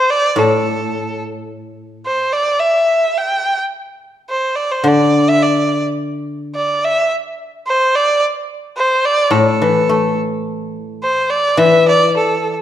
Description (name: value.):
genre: chinese traditional, Chinese chamber ensemble.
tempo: 107 BPM.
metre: 2/4.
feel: straight.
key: A yu mode.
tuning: A4 = 440 Hz.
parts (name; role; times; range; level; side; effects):
clear erhu; melody; 0.0-12.6 s; A4 to G5; -15 LUFS; right 1 dB; none.
guzheng; accompaniment; 0.4-2.1, 4.8-6.5, 9.3-12.6 s; A2 to A3; -15 LUFS; left 2 dB; none.
room: wet recital hall reverb, RT60 1.4 s.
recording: dark, warm production.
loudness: -13 LUFS.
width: side -11 dB against mid.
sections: 0.0-1.5 A section; 1.5-10.5 B section; 10.5-12.6 A section.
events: none.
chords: none.